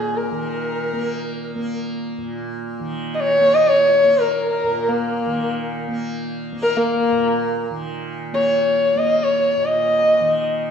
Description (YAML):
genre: indian classical, Hindustani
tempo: free time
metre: none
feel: none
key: unclear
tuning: A4 = 440 Hz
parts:
  - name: dark sarangi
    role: melody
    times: 0.0-10.5 s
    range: Bb3 to Eb5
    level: -17 LUFS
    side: left 1 dB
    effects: none
  - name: tanpura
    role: drone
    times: 0.0-10.7 s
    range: Bb2 to Bb3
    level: -27 LUFS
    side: right 2 dB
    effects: none
room: wet recital hall reverb, RT60 1.5 s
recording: minimal, uncompressed stereo recording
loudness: -17 LUFS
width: side -7 dB against mid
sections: 0.0-7.7 A section; 7.7-10.7 A section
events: none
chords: none